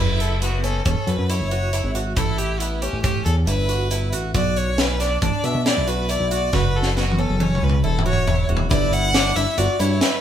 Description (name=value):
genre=progressive instrumental, band music in an uneven meter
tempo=138 BPM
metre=5/4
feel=straight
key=F# phrygian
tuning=A4 = 438 Hz
part: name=clear violin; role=melody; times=0.0-10.2 s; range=E4 to F#5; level=-25 LUFS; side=equal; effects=none
part: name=picked twelve-string acoustic guitar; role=arpeggios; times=0.0-10.1 s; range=B3 to F#4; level=-27 LUFS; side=right 2 dB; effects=none
part: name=fat analog bass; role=bass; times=0.0-10.0 s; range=E1 to B2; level=-22 LUFS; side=equal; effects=none
part: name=tight funk drum kit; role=drums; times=0.2-10.1 s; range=hi-hat, kick drum, snare drum, toms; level=-23 LUFS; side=equal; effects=none
part: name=dark baby grand piano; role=accompaniment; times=8.7-10.2 s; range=G3 to B4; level=-31 LUFS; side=left 7 dB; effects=none
room=moderate stone room reverb, RT60 1.4 s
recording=band playing live in one room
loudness=-18 LUFS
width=side -10 dB against mid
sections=0.0-8.7 A section; 8.7-10.2 B section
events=drum fill 6.5-8.7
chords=0.0 F#5; 2.2 A7; 4.3 Bm; 6.5 F#5; 8.7 G6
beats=0.42 0.86 1.29 1.73 | 2.17 2.60 3.04 3.48 3.91 | 4.35 4.79 5.22 5.66 6.10 | 6.53 6.97 7.41 7.84 8.28 | 8.71 9.15 9.58 10.02